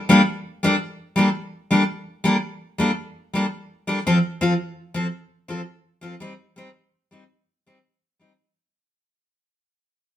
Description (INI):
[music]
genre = highlife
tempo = 111 BPM (dotted quarters)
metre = 12/8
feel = straight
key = G minor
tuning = A4 = 440 Hz
[part]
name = picked steel-string acoustic guitar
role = solo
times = 0.1-8.3 s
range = F3 to A4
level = -18 LUFS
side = left 1 dB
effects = none
[sound]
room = moderate studio reverb, RT60 0.8 s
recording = band playing live in one room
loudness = -20 LUFS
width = side -11 dB against mid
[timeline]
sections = 0.0-8.4 A section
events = fade-out 0.0-8.4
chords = 0.0 Gmadd9; 4.1 F; 6.2 Cm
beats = 0.28 0.82 1.36 | 1.90 2.43 2.97 3.51 | 4.05 4.59 5.13 5.68 | 6.22 6.76 7.30 7.84